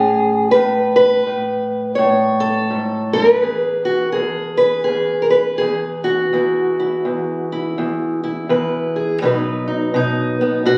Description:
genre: acoustic country blues, solo or duo.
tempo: 83 BPM.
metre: 4/4.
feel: swing 63% on 8ths.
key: E major.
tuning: A4 = 440 Hz.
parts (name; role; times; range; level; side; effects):
fingerpicked steel-string acoustic guitar; solo; 0.0-10.8 s; E2 to C#5; -18 LUFS; equal; none.
room: wet recital hall reverb, RT60 1.3 s.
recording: recorded on a phone in the room, club reverb, compression.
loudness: -18 LUFS.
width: mono.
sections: 0.0-10.8 A section.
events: none.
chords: 0.0 A; 3.4 E; 9.2 B.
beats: | 0.54 1.26 1.99 2.71 | 3.43 4.16 4.88 5.60 | 6.32 7.05 7.77 8.49 | 9.21 9.94 10.66.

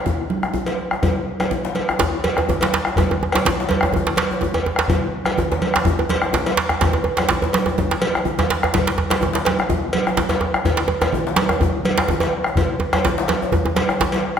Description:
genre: west african traditional, West African drum ensemble.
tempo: 125 BPM.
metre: 4/4.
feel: straight.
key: none.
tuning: none.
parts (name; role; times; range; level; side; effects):
bombo; percussion; 0.1-14.4 s; none; -24 LUFS; left 2 dB; none.
congas; percussion; 0.1-14.2 s; none; -25 LUFS; right 4 dB; none.
djembe; percussion; 0.1-14.2 s; none; -25 LUFS; left 5 dB; none.
cowbell; percussion; 0.7-14.2 s; none; -25 LUFS; equal; none.
djembe; percussion; 2.0-14.1 s; none; -21 LUFS; right 4 dB; none.
room: wet recital hall reverb, RT60 1.5 s.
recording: none.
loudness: -17 LUFS.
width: side -8 dB against mid.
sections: 0.0-2.0 A section; 2.0-14.4 B section.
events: none.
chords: none.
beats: | 0.06 0.54 1.03 1.51 | 2.00 2.48 2.96 3.45 | 3.93 4.41 4.89 5.38 | 5.86 6.34 6.82 7.30 | 7.78 8.26 8.74 9.22 | 9.70 10.18 10.66 11.14 | 11.62 12.10 12.58 13.05 | 13.53 14.01.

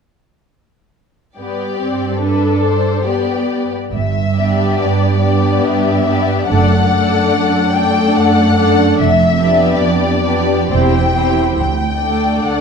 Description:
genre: classical, slow romantic movement for string orchestra.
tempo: 71 BPM.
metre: 3/4.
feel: uneven beats, rubato.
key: G major.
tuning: A4 = 439 Hz.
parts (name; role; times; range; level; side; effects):
warm symphonic violin section; melody; 1.4-12.6 s; B4 to G5; -18 LUFS; left 4 dB; none.
warm symphonic violin section; second line; 1.4-12.6 s; G4 to D5; -19 LUFS; left 5 dB; none.
warm symphonic viola section; accompaniment; 1.4-12.6 s; A3 to E4; -18 LUFS; equal; none.
warm symphonic cello section; bass; 1.4-12.6 s; D2 to G2; -18 LUFS; right 4 dB; none.
warm studio double bass section; bass; 3.9-12.3 s; E1 to D2; -19 LUFS; right 4 dB; none.
room: moderate scoring stage reverb, RT60 1.8 s.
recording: dark, warm production.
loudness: -12 LUFS.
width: side -6 dB against mid.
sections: 1.4-3.9 A section; 3.9-12.6 B section.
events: none.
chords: 1.4 G; 6.5 D/F#; 9.0 G7/F; 10.7 C/E; 11.6 D5.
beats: | 1.38 2.21 3.04 | 3.94 4.82 5.66 | 6.49 7.32 8.16 | 8.99 9.80 10.70 | 11.57 12.44.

